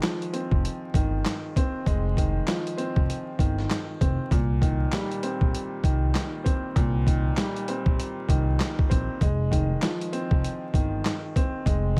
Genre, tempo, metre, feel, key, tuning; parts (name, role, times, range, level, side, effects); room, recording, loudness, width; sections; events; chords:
hip hop, boom-bap hip-hop; 98 BPM; 4/4; swing 60% on 16ths; A4 = 441 Hz
warm upright piano; accompaniment; 0.0-12.0 s; Bb2 to C4; -32 LUFS; equal; high-pass filter, low-pass filter
boom bap sampler-style drum kit; drums; 0.0-12.0 s; handclaps, hi-hat, kick drum, snare drum; -27 LUFS; equal
upright bass; bass; 0.5-12.0 s; F1 to C2; -29 LUFS; equal
small room ambience; vinyl crackle; -26 LUFS; mono
0.0-12.0 A section
0.0 Fm7; 4.3 Cm7; 9.2 Fm7